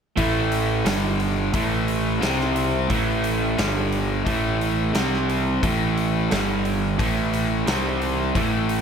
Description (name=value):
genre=classic rock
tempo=88 BPM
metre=4/4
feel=straight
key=unclear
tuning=A4 = 440 Hz
part: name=crunchy overdriven guitar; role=riff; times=0.2-8.8 s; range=G2 to C4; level=-24 LUFS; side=right 9 dB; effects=none
part: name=distorted electric guitar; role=riff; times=0.2-8.8 s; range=G2 to C4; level=-26 LUFS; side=left 13 dB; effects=distortion
part: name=fuzz picked electric bass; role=bass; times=0.2-8.8 s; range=G1 to C2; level=-26 LUFS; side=left 2 dB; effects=overdrive
part: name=big rock drum kit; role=drums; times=0.2-8.8 s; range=hi-hat, kick drum, snare drum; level=-28 LUFS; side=left 1 dB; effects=none
room=light reverb, studio reverb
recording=none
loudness=-20 LUFS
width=side -7 dB against mid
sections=0.2-8.8 A section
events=none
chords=0.2 A5; 0.9 G5; 1.5 A5; 2.2 C5; 2.9 A5; 3.6 G5; 4.3 A5; 4.9 C5; 5.6 A5; 6.3 G5; 7.0 A5; 7.7 C5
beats=| 0.17 0.86 1.54 2.22 | 2.90 3.58 4.26 4.95 | 5.63 6.31 6.99 7.67 | 8.35